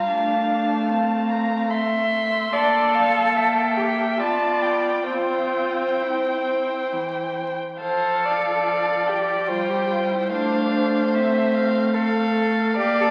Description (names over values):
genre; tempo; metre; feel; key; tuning
classical, slow romantic movement for string quartet; 64-76 BPM; 3/4; rubato; F major; A4 = 440 Hz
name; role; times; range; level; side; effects
muted violin; melody; 0.0-13.1 s; E5 to C6; -31 LUFS; equal; none
muted violin; second line; 0.0-13.1 s; A4 to F5; -25 LUFS; equal; none
muted viola; accompaniment; 0.0-13.1 s; E3 to C4; -28 LUFS; equal; none
muted cello; bass; 0.0-13.1 s; C4 to A4; -27 LUFS; equal; none
room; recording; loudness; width
wet scoring stage reverb, RT60 2.0 s; very old 78 rpm record, vinyl crackle; -22 LUFS; mono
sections
0.0-13.1 A section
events
none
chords
0.1 F/A; 2.5 Gm7/Bb; 4.2 G7/B; 5.1 C; 7.8 F; 10.3 F/A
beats
| 0.08 0.89 1.72 | 2.53 3.35 4.20 | 5.09 6.00 6.93 | 7.83 8.68 9.49 | 10.33 11.15 11.94 | 12.78